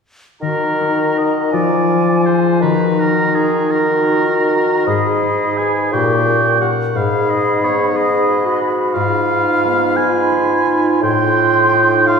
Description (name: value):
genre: classical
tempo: 50-61 BPM (dotted quarters)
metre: 6/8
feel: rubato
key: Eb minor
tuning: A4 = 438 Hz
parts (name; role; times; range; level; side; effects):
- clear clarinet; second line; 0.4-12.2 s; F4 to Ab4; -21 LUFS; right 2 dB; none
- mellow hollow concert flute; second line; 0.4-12.2 s; Ab5 to Db6; -21 LUFS; left 1 dB; none
- warm oboe; second line; 0.4-12.2 s; Ab4 to Ab5; -19 LUFS; right 2 dB; none
- warm bassoon; accompaniment; 0.4-12.2 s; Ab2 to F3; -19 LUFS; right 1 dB; none
- concert harp; arpeggios; 0.4-12.2 s; Ab2 to Cb5; -19 LUFS; left 4 dB; none
room: wet scoring stage reverb, RT60 2.2 s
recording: heard from further back in the room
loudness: -13 LUFS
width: side -5 dB against mid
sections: 0.4-12.2 A section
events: none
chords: 0.4 Ebm; 1.5 Ddim/F; 2.6 Ebm; 4.9 Abm; 5.9 Gdim/Bb; 7.0 Abm; 9.0 Fdim/Ab; 11.0 F7/A